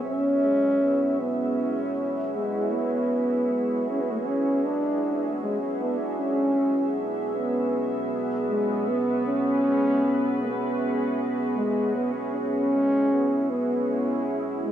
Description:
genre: ambient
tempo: 78 BPM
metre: 4/4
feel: swing 58% on 16ths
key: unclear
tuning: A4 = 440 Hz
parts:
  - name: trombone with bucket mute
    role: melody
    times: 0.0-14.7 s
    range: G#3 to D4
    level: -24 LUFS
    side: equal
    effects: dub echo
  - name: deep dark ambient pad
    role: sustained chords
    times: 0.0-14.7 s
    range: B3 to E5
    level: -28 LUFS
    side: right 1 dB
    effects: chorus, built-in reverb
room: moderate spring reverb, RT60 1.3 s, small room ambience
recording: none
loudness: -22 LUFS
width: side -10 dB against mid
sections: 0.0-14.7 A section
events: none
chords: 0.0 Eadd9

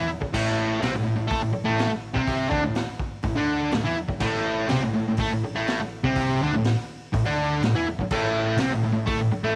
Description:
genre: garage rock duo or trio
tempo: 124 BPM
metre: 4/4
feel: straight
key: unclear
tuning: A4 = 442 Hz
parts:
  - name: fuzz guitar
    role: riff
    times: 0.0-9.6 s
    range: A2 to A4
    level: -26 LUFS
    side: equal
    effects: distortion
  - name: dark grand piano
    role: bass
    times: 0.0-9.6 s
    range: A1 to A2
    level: -34 LUFS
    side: equal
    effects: none
  - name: raw garage drum kit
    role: drums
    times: 0.2-9.2 s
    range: crash cymbal, hi-hat, kick drum, snare drum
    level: -33 LUFS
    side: equal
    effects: none
room: light reverb, small room ambience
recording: none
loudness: -25 LUFS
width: mono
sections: 0.0-9.6 A section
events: none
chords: 0.0 A5

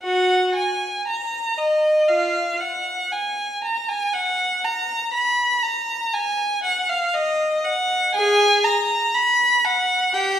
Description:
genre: classical, baroque-style suite movement for unaccompanied violin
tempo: 60 BPM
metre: 4/4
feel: rubato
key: F# major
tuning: A4 = 437 Hz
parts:
  - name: rich violin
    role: solo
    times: 0.0-10.4 s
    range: E#4 to B5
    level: -18 LUFS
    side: equal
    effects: none
room: wet recital hall reverb, RT60 1.6 s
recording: recorded in a church or concert hall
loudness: -18 LUFS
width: side -10 dB against mid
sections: 0.0-10.4 A section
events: none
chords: none

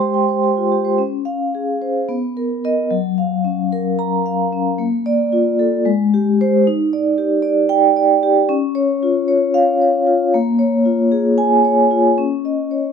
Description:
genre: classical, contemporary piece for solo vibraphone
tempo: 225 BPM (eighths)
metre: 7/8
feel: rubato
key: unclear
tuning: A4 = 440 Hz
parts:
  - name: vibraphone with soft mallets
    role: solo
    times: 0.0-12.9 s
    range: Gb3 to C6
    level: -14 LUFS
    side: equal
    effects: none
room: moderate stone room reverb, RT60 1.1 s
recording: dark, warm production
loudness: -14 LUFS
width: side -6 dB against mid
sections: 1.0-12.9 A section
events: none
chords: 0.0 Abmaj7; 1.0 Dbmaj7; 2.1 Cbmaj7; 2.9 Gbmaj7; 4.8 Bbmaj7; 5.9 Abmaj7; 6.6 Ebmaj7; 8.5 Db; 10.3 Bbm7; 12.2 Dbsus2

